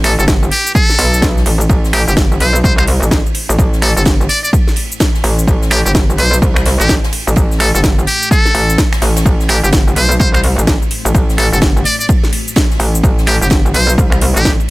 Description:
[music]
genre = bass house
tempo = 127 BPM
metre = 4/4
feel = swing 61% on 16ths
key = A dorian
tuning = A4 = 440 Hz
[part]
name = trumpet with metal mute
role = melody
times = 0.0-14.5 s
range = G4 to D5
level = -16 LUFS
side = equal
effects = tape echo
[part]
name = dark analog pad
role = sustained chords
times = 0.5-14.7 s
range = A3 to D5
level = -31 LUFS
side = left 6 dB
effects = none
[part]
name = metallic wobble bass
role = bass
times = 0.0-14.6 s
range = G1 to C2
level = -14 LUFS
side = equal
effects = chorus, overdrive, sidechain pumping
[part]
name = house drum kit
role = drums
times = 0.0-14.7 s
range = finger snaps, hi-hat, shaker, snare drum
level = -18 LUFS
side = equal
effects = overdrive
[part]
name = open jazz drum kit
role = drums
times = 0.0-14.7 s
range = ride cymbal, snare drum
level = -28 LUFS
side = right 2 dB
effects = sidechain pumping on cymbals, high-pass filter on cymbals, high-pass filter on snare, high-pass filter on room
[part]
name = electronic kick drum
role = drums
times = 0.3-14.6 s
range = none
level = -13 LUFS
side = equal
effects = overdrive
[sound]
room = studio ambience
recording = none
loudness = -10 LUFS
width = side -20 dB against mid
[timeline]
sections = 0.0-14.7 A section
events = none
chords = 0.0 Am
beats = 0.28 0.75 1.22 | 1.70 2.17 2.64 3.11 | 3.58 4.06 4.53 5.00 | 5.47 5.95 6.42 6.89 | 7.37 7.84 8.31 8.78 | 9.26 9.73 10.20 10.67 | 11.14 11.62 12.09 12.56 | 13.03 13.51 13.98 14.45

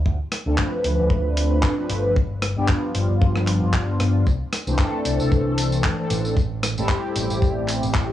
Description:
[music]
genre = nu-disco, nu disco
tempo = 114 BPM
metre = 4/4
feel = swing 55% on 16ths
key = C major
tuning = A4 = 440 Hz
[part]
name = picked electric bass with an envelope filter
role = bass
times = 0.1-8.1 s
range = G1 to D2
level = -23 LUFS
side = equal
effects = sidechain pumping
[part]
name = kick drum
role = drums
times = 0.1-8.1 s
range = none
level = -21 LUFS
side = left 1 dB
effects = studio reverb, cassette tape
[part]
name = dusty soul sampler-style drum kit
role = drums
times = 0.3-8.1 s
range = handclaps, hi-hat, rim click, tambourine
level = -27 LUFS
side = equal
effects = studio reverb, cassette tape
[part]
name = mellow synth brass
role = accompaniment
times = 0.5-8.1 s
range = E3 to B4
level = -24 LUFS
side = equal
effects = chorus, phaser, cassette tape, analog delay
[sound]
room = light reverb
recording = home recording on cassette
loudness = -19 LUFS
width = side -12 dB against mid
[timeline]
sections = 0.0-8.1 A section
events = none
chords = 0.0 Dm7; 2.2 G7; 4.3 C69; 6.4 Am7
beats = | 0.05 0.58 1.11 1.63 | 2.16 2.69 3.21 3.74 | 4.26 4.79 5.32 5.84 | 6.37 6.90 7.42 7.95

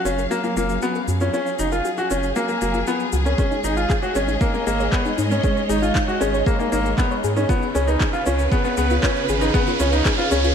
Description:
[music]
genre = piano and strings electronica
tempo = 117 BPM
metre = 4/4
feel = straight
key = F# major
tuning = A4 = 440 Hz
[part]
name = warm symphonic string section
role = sustained chords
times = 0.0-10.5 s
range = C#3 to E#5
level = -26 LUFS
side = right 1 dB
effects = none
[part]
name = soft round pluck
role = arpeggios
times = 0.1-10.5 s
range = D#4 to C#5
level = -27 LUFS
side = left 3 dB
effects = chorus, sidechain pumping, ping-pong delay
[part]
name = bright upright piano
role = riff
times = 0.1-10.5 s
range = A#3 to F#4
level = -22 LUFS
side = left 1 dB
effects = ping-pong delay
[part]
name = round analog bass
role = bass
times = 0.1-10.5 s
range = F#1 to G#2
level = -23 LUFS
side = equal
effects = sidechain pumping
[part]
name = electronic shaker and handclaps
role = drums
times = 0.1-10.5 s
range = none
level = -31 LUFS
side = left 1 dB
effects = overdrive
[part]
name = electronic kick drum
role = drums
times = 3.4-10.2 s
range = none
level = -22 LUFS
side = equal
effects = overdrive
[part]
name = riser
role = sound effects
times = 6.3-10.5 s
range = none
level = -31 LUFS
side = right 3 dB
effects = none
[sound]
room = moderate echo chamber reverb, RT60 2.2 s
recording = none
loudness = -18 LUFS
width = side -7 dB against mid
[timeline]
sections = 0.0-10.5 A section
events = build-up 0.0-10.5; filter sweep on synth arpeggio sound 0.0-10.5; riser 6.3-10.5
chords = 0.0 F#maj7; 3.4 G#sus4; 7.5 C#7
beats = 0.31 0.83 | 1.34 1.85 2.37 2.88 | 3.39 3.90 4.42 4.93 | 5.44 5.96 6.47 6.98 | 7.49 8.01 8.52 9.03 | 9.54 10.06

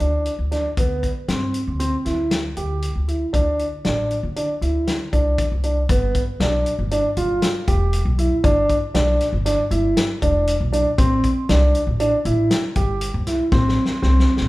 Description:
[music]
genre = progressive instrumental, band music in an uneven meter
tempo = 118 BPM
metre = 5/4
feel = straight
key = unclear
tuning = A4 = 442 Hz
[part]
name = dark baby grand piano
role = arpeggios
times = 0.0-14.3 s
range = B3 to G4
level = -21 LUFS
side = right 1 dB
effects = none
[part]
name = upright bass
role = bass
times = 0.0-14.5 s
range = E1 to D3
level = -22 LUFS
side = equal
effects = none
[part]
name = loose indie drum kit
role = drums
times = 0.0-14.5 s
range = hi-hat, kick drum, snare drum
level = -23 LUFS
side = left 1 dB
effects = none
[sound]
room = moderate recital hall reverb, RT60 1.3 s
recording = recorded in a church or concert hall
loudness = -17 LUFS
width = side -18 dB against mid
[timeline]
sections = 0.0-5.9 A section; 5.9-14.5 B section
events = drum fill 13.5-14.5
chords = 0.0 N.C.; 0.8 C/D; 3.3 D5; 5.9 G; 11.0 Am7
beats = 0.26 | 0.77 1.28 1.80 2.31 2.82 | 3.33 3.85 4.36 4.87 5.38 | 5.89 6.40 6.91 7.42 7.93 | 8.44 8.95 9.46 9.97 10.48 | 10.98 11.49 12.00 12.51 13.01 | 13.52 14.03

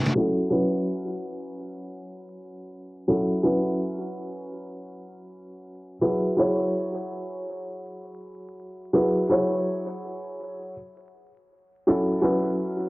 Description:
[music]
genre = trip hop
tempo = free time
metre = none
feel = none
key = F# minor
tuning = A4 = 439 Hz
[part]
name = felt-muted upright piano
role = accompaniment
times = 0.0-12.9 s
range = F#3 to C#5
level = -24 LUFS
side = equal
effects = harmonic tremolo, cassette tape, tape echo
[sound]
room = light reverb, small room reverb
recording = home recording on cassette, vinyl crackle, low-pass filter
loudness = -23 LUFS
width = side -21 dB against mid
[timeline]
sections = 0.2-12.9 A section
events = filter sweep 0.2-12.9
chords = 0.2 F#7(no3); 6.0 Eadd9/F#; 11.9 F#m7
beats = free time

